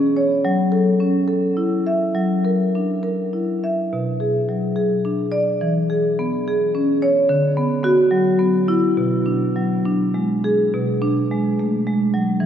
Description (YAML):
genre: classical, contemporary piece for solo marimba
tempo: 67-74 BPM (dotted quarters)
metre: 6/8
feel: rubato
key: B minor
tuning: A4 = 442 Hz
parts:
  - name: marimba with medium hard mallets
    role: solo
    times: 0.0-12.5 s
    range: B2 to E5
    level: -17 LUFS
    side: equal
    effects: none
room: wet cathedral reverb, RT60 5.7 s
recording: heard from further back in the room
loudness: -17 LUFS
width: side -9 dB against mid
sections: 0.0-10.7 A section; 10.7-12.5 A section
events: none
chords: 0.4 F#m7; 2.1 F#aug7; 3.9 Bm6; 5.6 E6; 7.3 D6; 8.1 F#7sus4; 9.0 Bm6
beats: | 0.44 1.28 | 2.15 3.04 | 3.92 4.77 | 5.62 6.46 | 7.28 8.11 | 8.96 9.85 | 10.74 11.58 | 12.41